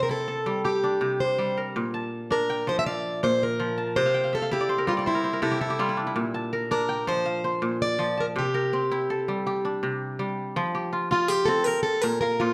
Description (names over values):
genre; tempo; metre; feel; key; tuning
west african traditional; 109 BPM (dotted quarters); 12/8; straight; unclear; A4 = 440 Hz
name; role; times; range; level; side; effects
picked plugged-in steel-string acoustic guitar; melody; 0.0-12.5 s; E4 to E5; -28 LUFS; equal; none
kora; arpeggios; 0.0-12.5 s; Bb2 to A5; -30 LUFS; equal; slapback echo
room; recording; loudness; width
moderate recital hall reverb, RT60 1.6 s; none; -26 LUFS; mono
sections
0.0-10.6 A section; 10.6-12.5 B section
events
kora fill 4.1-6.2; steel-string acoustic guitar solo 10.6-12.5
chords
0.0 C; 1.8 Bb; 4.0 C; 6.2 Bb; 8.4 C; 10.6 F5; 11.7 Bb5